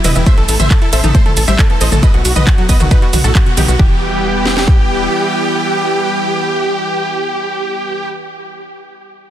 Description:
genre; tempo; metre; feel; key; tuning
uplifting trance; 136 BPM; 4/4; straight; E harmonic minor; A4 = 440 Hz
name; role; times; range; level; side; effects
big supersaw lead; melody; 0.0-8.1 s; D#4 to E5; -18 LUFS; right 1 dB; cassette tape, sidechain pumping, dub echo
wide unison pluck; second line; 0.0-8.4 s; E4 to E5; -25 LUFS; right 2 dB; sidechain pumping, dub echo
lush unison pad; sustained chords; 0.0-8.1 s; C3 to G4; -21 LUFS; equal; chorus, sidechain pumping
analog pluck; arpeggios; 0.0-4.0 s; A2 to A4; -22 LUFS; left 3 dB; chorus, vintage 12-bit sampler grit, sidechain pumping, dub echo
tight sequencer bass; bass; 0.0-5.1 s; E1 to B1; -16 LUFS; equal; sidechain pumping
house drum kit; drums; 0.0-3.8 s; handclaps, hi-hat, ride cymbal, shaker, toms; -18 LUFS; right 1 dB; sidechain pumping on hats, sidechain pumping on toms, sidechain pumping on cymbals, sidechain pumping on perc
house drum kit; drums; 0.3-4.8 s; kick drum, snare drum; -10 LUFS; equal; none
room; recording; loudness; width
light reverb; dense, heavily limited modern master; -10 LUFS; side -12 dB against mid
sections
0.0-3.8 A section; 3.8-7.3 B section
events
drop 0.0-3.8; band accent 3.4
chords
0.3 Am; 2.0 B; 3.8 Em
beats
| 0.27 0.71 1.15 1.59 | 2.03 2.47 2.91 3.35 | 3.79 4.24 4.68 5.12 | 5.56 6.00 6.44 6.88

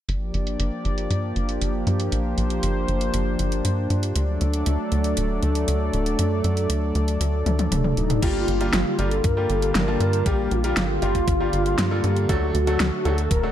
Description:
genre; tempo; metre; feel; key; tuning
synthwave; 118 BPM; 4/4; straight; G minor; A4 = 440 Hz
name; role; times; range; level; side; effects
warm analog pad; sustained chords; 0.1-13.5 s; D3 to D5; -26 LUFS; equal; chorus, vintage 12-bit sampler grit, sidechain pumping
tight sequencer bass; bass; 0.1-13.5 s; D1 to G2; -24 LUFS; equal; none
pop drum kit; drums; 0.1-13.4 s; crash cymbal, hi-hat, snare drum, toms; -27 LUFS; equal; overdrive, low-pass filter on hats, low-pass filter on toms, low-pass filter on cymbals, low-pass filter on snare, low-pass filter on room
expressive synth lead; melody; 8.0-13.4 s; Eb4 to Bb4; -25 LUFS; left 1 dB; ensemble chorus, cassette tape, tape echo
bright concert grand piano; stabs; 8.2-13.5 s; F#3 to A5; -29 LUFS; right 1 dB; none
electronic kick drum; drums; 8.2-13.4 s; none; -23 LUFS; equal; none
room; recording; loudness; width
light reverb; dark, warm production; -20 LUFS; side -11 dB against mid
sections
0.1-8.2 A section; 8.2-13.5 B section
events
filter sweep on drum 0.1-8.2; filter sweep on analog synth bass 0.1-8.2; drum fill 7.5-8.2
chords
0.1 Gm7; 4.2 D; 8.2 Gm7; 12.3 D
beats
| 0.09 0.60 1.11 1.61 | 2.12 2.63 3.14 3.65 | 4.16 4.67 5.17 5.68 | 6.19 6.70 7.21 7.72 | 8.22 8.73 9.24 9.75 | 10.26 10.77 11.28 11.78 | 12.29 12.80 13.31

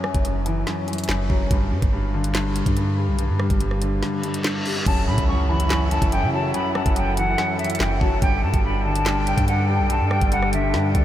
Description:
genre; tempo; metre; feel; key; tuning
hip hop, drill; 143 BPM; 4/4; half-time; F# phrygian; A4 = 441 Hz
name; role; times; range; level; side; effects
felt-muted upright piano; accompaniment; 0.0-11.0 s; F#2 to G3; -24 LUFS; left 1 dB; lush chorus
drill drum kit; drums; 0.0-11.0 s; crash cymbal, handclaps, hi-hat, kick drum, rim click, snare drum; -25 LUFS; equal; none
long sustained 808-style bass; bass; 0.1-11.0 s; F#1 to C#3; -23 LUFS; equal; none
reverse cymbal and impact; sound effects; 4.2-6.5 s; none; -32 LUFS; equal; none
silver concert flute; melody; 4.9-11.0 s; D5 to C#6; -25 LUFS; equal; diffuse ambient delay
small flute group; sustained chords; 4.9-11.0 s; D4 to G5; -29 LUFS; equal; none
room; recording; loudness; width
moderate huge ambient reverb, RT60 7.3 s; dreamy mix soaked in reverb, faint mains hum; -19 LUFS; side -12 dB against mid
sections
0.0-4.9 A section; 4.9-11.0 B section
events
break 4.0-4.9; reverse cymbal 4.2-4.9; impact 4.9-6.5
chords
0.0 F#7(no3); 1.5 G5; 4.9 F#m7; 8.2 Gsus2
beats
0.25 0.67 1.09 | 1.51 1.93 2.35 2.77 | 3.19 3.61 4.03 4.45 | 4.87 5.28 5.70 6.12 | 6.54 6.96 7.38 7.80 | 8.22 8.64 9.06 9.48 | 9.90 10.32 10.74

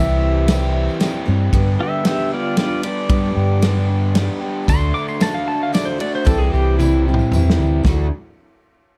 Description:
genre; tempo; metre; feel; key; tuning
folk rock and heartland rock; 114 BPM; 3/4; straight; unclear; A4 = 439 Hz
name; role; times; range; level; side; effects
pedal steel guitar; melody; 0.0-7.0 s; E4 to D6; -25 LUFS; equal; plate reverb, tape echo
picked steel-string acoustic guitar; accompaniment; 0.0-8.1 s; G2 to G4; -26 LUFS; equal; none
crunchy overdriven guitar; riff; 0.0-8.1 s; G2 to G4; -28 LUFS; equal; none
hollow-body short-scale fingered electric bass; bass; 0.0-8.1 s; C2 to G3; -20 LUFS; equal; none
tambourine; percussion; 0.1-1.1, 4.7-8.1 s; none; -42 LUFS; equal; none
natural country drum kit; drums; 0.5-8.0 s; kick drum, ride cymbal, snare drum, toms; -22 LUFS; equal; none
room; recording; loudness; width
light reverb; dark, warm production; -18 LUFS; mono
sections
0.0-1.5 A section; 1.5-7.8 B section; 7.8-9.0 C section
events
pedal steel guitar solo 1.5-7.8; drum fill 6.8-7.8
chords
0.0 C; 1.5 G; 4.7 D; 6.3 C; 7.8 D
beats
0.49 1.01 | 1.53 2.06 2.58 | 3.11 3.64 4.16 | 4.69 5.22 5.74 | 6.27 6.79 7.32 | 7.85

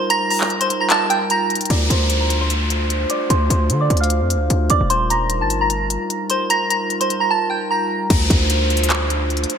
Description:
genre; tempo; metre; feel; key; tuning
hip hop, trap; 150 BPM; 4/4; half-time; D phrygian; A4 = 442 Hz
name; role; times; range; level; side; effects
soft synth bell; melody; 0.0-8.1 s; C5 to Bb6; -20 LUFS; right 2 dB; chorus, phaser, low-pass filter, digital delay
glass harmonica; sustained chords; 0.0-9.6 s; G3 to C5; -24 LUFS; right 1 dB; stereo widening, low-pass filter
trap drum kit; drums; 0.1-9.6 s; crash cymbal, handclaps, hi-hat, kick drum; -21 LUFS; left 1 dB; gated reverb
hard-hitting 808-style bass; bass; 1.7-9.5 s; Eb1 to D3; -19 LUFS; equal; none
downlifter; sound effects; 1.7-4.9, 8.1-9.6 s; none; -25 LUFS; equal; none
room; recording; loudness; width
moderate plate reverb, RT60 2.8 s; bright 1980s-style digital production; -16 LUFS; side -7 dB against mid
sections
0.0-1.7 A section; 1.7-8.1 B section; 8.1-9.6 C section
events
kick muted 0.1-1.7; filter sweep 1.7-8.1; drums muted 7.3-8.1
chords
0.0 Ebadd9; 1.7 Dm7; 4.9 Ebadd9; 8.1 Dm7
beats
| 0.10 0.50 0.90 1.30 | 1.70 2.10 2.50 2.90 | 3.30 3.70 4.10 4.50 | 4.90 5.30 5.70 6.10 | 6.50 6.90 7.30 7.70 | 8.10 8.50 8.90 9.30

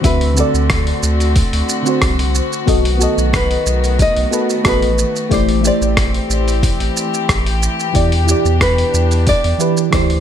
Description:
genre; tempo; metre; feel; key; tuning
sunset chillout; 91 BPM; 4/4; straight; E minor; A4 = 440 Hz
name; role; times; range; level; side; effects
nylon-string guitar; melody; 0.0-10.2 s; A4 to D#5; -20 LUFS; equal; digital delay
mellow FM electric piano; accompaniment; 0.0-10.2 s; D3 to E5; -19 LUFS; moving between left 7 dB and right 5 dB; chorus, phaser, auto-pan, digital delay
warm chamber string section; sustained chords; 0.0-10.2 s; B2 to G4; -22 LUFS; left 2 dB; none
warm sub bass; bass; 0.0-10.2 s; A1 to E2; -16 LUFS; equal; tube saturation
dusty soul sampler-style drum kit; drums; 0.0-10.2 s; hi-hat, rim click, shaker; -21 LUFS; right 1 dB; none
electronic kick drum; drums; 0.0-10.1 s; none; -18 LUFS; equal; none
room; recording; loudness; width
little or no reverb; none; -13 LUFS; side -9 dB against mid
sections
0.0-10.2 A section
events
none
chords
0.0 D7; 2.7 B7; 5.3 Am7; 8.0 Em7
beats
| 0.04 0.70 1.36 2.02 | 2.67 3.33 3.99 4.65 | 5.31 5.97 6.63 7.29 | 7.95 8.61 9.27 9.93

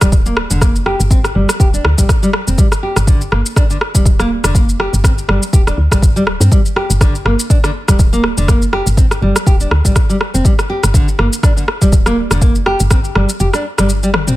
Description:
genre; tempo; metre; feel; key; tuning
afro house; 122 BPM; 4/4; swing 56% on 16ths; G minor; A4 = 440 Hz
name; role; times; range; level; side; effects
nylon-string guitar; arpeggios; 0.0-14.4 s; D3 to G4; -18 LUFS; equal; sidechain pumping, low-pass filter, ping-pong delay
woody FM bass; bass; 0.0-14.3 s; D1 to G2; -16 LUFS; equal; sidechain pumping
deep house drum kit; drums; 0.0-14.4 s; rim click, shaker, toms; -18 LUFS; equal; small room ambience
electronic kick drum; drums; 0.0-13.0 s; none; -11 LUFS; equal; small room ambience
room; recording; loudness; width
little or no reverb; none; -10 LUFS; side -17 dB against mid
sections
0.0-14.4 A section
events
kick drops out 13.4-14.4; drum fill 14.1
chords
0.0 G7(no3)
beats
0.12 | 0.61 1.11 1.60 2.09 | 2.58 3.07 3.56 4.06 | 4.55 5.04 5.53 6.02 | 6.52 7.01 7.50 7.99 | 8.48 8.97 9.47 9.96 | 10.45 10.94 11.43 11.93 | 12.42 12.91 13.40 13.89

